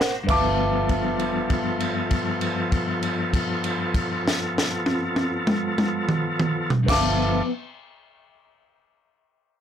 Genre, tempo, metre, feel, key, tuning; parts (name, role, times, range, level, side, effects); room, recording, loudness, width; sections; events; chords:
slow blues; 33 BPM (dotted quarters); 12/8; straight; G mixolydian; A4 = 441 Hz
mellow tine electric piano; accompaniment; 0.0-7.4 s; Bb4 to A5; -28 LUFS; right 3 dB
bright tonewheel organ; sustained chords; 0.0-7.4 s; F3 to C5; -27 LUFS; equal; slow rotary speaker
vintage muted fingered electric bass; bass; 0.0-7.4 s; G1 to Ab1; -29 LUFS; equal; transformer saturation
compact cocktail drum kit; drums; 0.0-7.2 s; crash cymbal, kick drum, snare drum, toms; -25 LUFS; equal; soft clipping on kick
electric guitar at the edge of break-up; accompaniment; 0.2-7.5 s; G2 to B3; -29 LUFS; left 3 dB; tremolo
dark upright piano; second line; 0.3-7.4 s; D6; -28 LUFS; left 3 dB
light reverb; blown-out, overdriven recording, overdrive; -21 LUFS; side -9 dB against mid
0.3-7.6 A section
drum fill 0.0; held note 0.3-6.9
0.3 G13